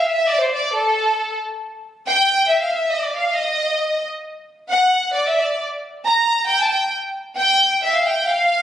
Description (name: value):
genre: mexican folk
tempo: 136 BPM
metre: 3/4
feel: straight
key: F major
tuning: A4 = 439 Hz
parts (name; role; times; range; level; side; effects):
- rich studio violin section; solo; 0.0-8.6 s; A4 to Bb5; -16 LUFS; equal; none
room: wet recital hall reverb, RT60 1.5 s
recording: recorded on a phone in the room, studio reverb, compression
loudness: -16 LUFS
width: side -11 dB against mid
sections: 0.0-8.6 A section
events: none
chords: none